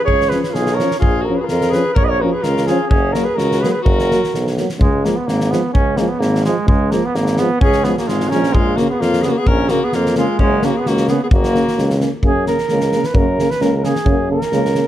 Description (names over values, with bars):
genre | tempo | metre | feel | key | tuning
balkan folk, Balkan brass band | 129 BPM | 2/4 | straight | F# major | A4 = 439 Hz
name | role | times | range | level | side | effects
dark flugelhorn | melody | 0.0-14.9 s | G#3 to D#5 | -19 LUFS | right 2 dB | none
clear alto saxophone | second line | 0.0-4.5, 7.6-12.0 s | C#4 to B4 | -22 LUFS | left 4 dB | none
clear tuba | bass | 0.1-14.8 s | F#1 to F#2 | -20 LUFS | equal | none
loose indie drum kit | percussion | 0.1-14.8 s | kick drum, snare drum | -19 LUFS | equal | none
warm euphonium | accompaniment | 0.3-14.9 s | G#3 to C#4 | -24 LUFS | left 6 dB | none
warm euphonium | accompaniment | 0.3-14.8 s | C#3 to F#3 | -23 LUFS | right 5 dB | none
room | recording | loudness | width
light reverb | none | -14 LUFS | side -12 dB against mid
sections
0.0-4.8 A section; 4.8-12.2 A section; 12.2-14.9 B section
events
speeding up 0.0-14.9; flugelhorn solo 12.2-14.9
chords
0.0 C#; 1.0 A#m; 2.9 F#; 4.8 C#; 8.5 A#m; 10.4 F#